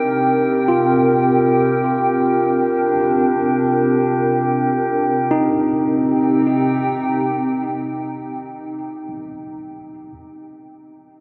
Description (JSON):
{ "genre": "ambient", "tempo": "free time", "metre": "none", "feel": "none", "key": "C minor", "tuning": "A4 = 440 Hz", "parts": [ { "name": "warbly tape-like pad", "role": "sustained chords", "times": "0.0-8.4 s", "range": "C3 to G5", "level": "-21 LUFS", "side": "equal", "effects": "chorus, built-in reverb" }, { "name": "overdriven tine electric piano", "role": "arpeggios", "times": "0.0-10.1 s", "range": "Eb4 to F4", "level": "-25 LUFS", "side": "equal", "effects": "delay" }, { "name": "glass harmonica", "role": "texture", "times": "0.0-5.3 s", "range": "G4 to G5", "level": "-24 LUFS", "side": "equal", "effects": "none" } ], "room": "wet huge ambient reverb, RT60 8.1 s", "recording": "none", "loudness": "-17 LUFS", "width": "mono", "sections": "0.0-5.3 A section; 5.3-7.6 B section", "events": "none", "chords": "0.0 Cm7; 0.7 Gm/C; 5.3 Cm" }